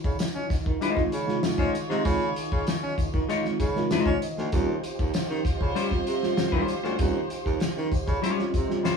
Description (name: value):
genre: funk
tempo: 97 BPM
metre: 4/4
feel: straight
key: unclear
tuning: A4 = 445 Hz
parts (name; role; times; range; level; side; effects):
- mellow tonewheel organ; sustained chords; 0.0-9.0 s; Eb3 to C5; -35 LUFS; right 1 dB; fast rotary speaker, chorus vibrato
- warm baritone saxophone; bass; 0.0-8.8 s; D2 to Db4; -31 LUFS; right 2 dB; none
- cloth-damped thuddy drum kit; drums; 0.0-9.0 s; hi-hat, kick drum, snare drum; -28 LUFS; equal; none
- tambourine; percussion; 0.0-9.0 s; none; -46 LUFS; left 2 dB; none
- mellow tine electric piano; stabs; 0.3-9.0 s; C3 to Eb5; -30 LUFS; right 3 dB; none
- clear horn section; second line; 0.8-9.0 s; F4 to Db5; -35 LUFS; equal; none
- semi-hollow electric guitar; accompaniment; 0.8-9.0 s; G3 to Db5; -27 LUFS; left 5 dB; none
room: moderate studio reverb, RT60 0.6 s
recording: band playing live in one room, studio ambience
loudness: -24 LUFS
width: side -5 dB against mid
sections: 0.0-9.0 A section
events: tine electric piano fill 3.3-4.5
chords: 0.0 Dbmaj9; 4.5 Eb13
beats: 0.20 0.82 1.44 | 2.06 2.67 3.29 3.91 | 4.53 5.15 5.76 6.38 | 7.00 7.62 8.23 8.85